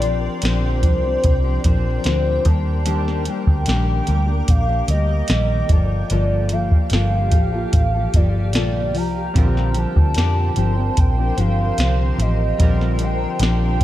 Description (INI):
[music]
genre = indie pop, bedroom pop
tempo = 74 BPM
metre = 4/4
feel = straight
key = unclear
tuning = A4 = 437 Hz
[part]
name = hollow clarinet-like synth lead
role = melody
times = 0.0-13.8 s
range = C5 to Bb5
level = -25 LUFS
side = equal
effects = analog chorus, tape echo
[part]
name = fingerpicked steel-string acoustic guitar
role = accompaniment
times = 0.0-13.8 s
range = G2 to A4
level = -24 LUFS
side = left 3 dB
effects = wide subtle chorus, vibrato effect
[part]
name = granular cloud pad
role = sustained chords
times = 0.0-13.8 s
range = G4 to D6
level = -31 LUFS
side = equal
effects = built-in reverb
[part]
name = vintage muted picked electric bass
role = bass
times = 0.0-13.8 s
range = G1 to F2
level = -20 LUFS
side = equal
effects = none
[part]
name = soft vintage rhythm box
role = drums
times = 0.0-13.8 s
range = hi-hat, kick drum, snare drum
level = -19 LUFS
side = equal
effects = none
[part]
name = chorused retro synth keys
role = accompaniment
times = 9.3-13.8 s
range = D3 to Bb4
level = -30 LUFS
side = right 5 dB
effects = cassette tape
[sound]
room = light reverb, digital ambience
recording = none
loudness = -16 LUFS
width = side -14 dB against mid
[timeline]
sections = 0.0-13.8 A section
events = none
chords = 0.0 Bb69; 2.5 Ebmaj7; 5.7 Gm9